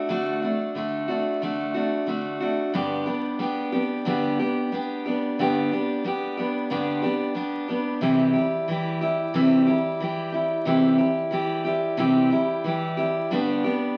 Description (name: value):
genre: country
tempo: 91 BPM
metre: 4/4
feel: straight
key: G major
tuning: A4 = 439 Hz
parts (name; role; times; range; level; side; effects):
- picked steel-string acoustic guitar; solo; 0.0-14.0 s; G2 to G4; -24 LUFS; equal; none
room: wet studio reverb, RT60 0.5 s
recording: very old 78 rpm record, vinyl crackle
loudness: -24 LUFS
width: mono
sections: 0.0-13.3 A section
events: none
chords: 0.0 D; 2.7 G; 8.0 C; 13.3 G